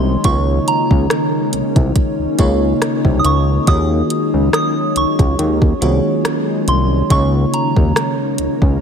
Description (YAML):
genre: contemporary R&B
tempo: 70 BPM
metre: 4/4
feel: swing 54% on 16ths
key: unclear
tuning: A4 = 439 Hz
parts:
  - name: soft synth bell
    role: melody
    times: 0.0-8.4 s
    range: Bb5 to Eb6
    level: -21 LUFS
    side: right 2 dB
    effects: chorus, ping-pong delay
  - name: FM electric piano with soft pad layer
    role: accompaniment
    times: 0.0-8.8 s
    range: Db3 to Db5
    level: -21 LUFS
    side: right 1 dB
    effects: chorus
  - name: glassy FM pad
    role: sustained chords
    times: 0.0-8.8 s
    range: Eb3 to Eb4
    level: -20 LUFS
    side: left 2 dB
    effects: ensemble chorus, built-in reverb, sidechain pumping
  - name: fat analog bass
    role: bass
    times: 0.0-8.8 s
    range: C2 to Eb2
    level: -16 LUFS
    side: equal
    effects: none
  - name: smooth R&B drum kit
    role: drums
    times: 0.2-8.8 s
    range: hi-hat, kick drum, rim click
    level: -16 LUFS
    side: equal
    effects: none
room: light reverb, digital ambience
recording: none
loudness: -13 LUFS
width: side -7 dB against mid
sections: 0.0-8.8 A section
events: none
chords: 0.2 Db69; 3.7 Ebm11; 7.1 Db69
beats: | 0.25 1.10 1.96 2.82 | 3.67 4.53 5.39 6.25 | 7.10 7.96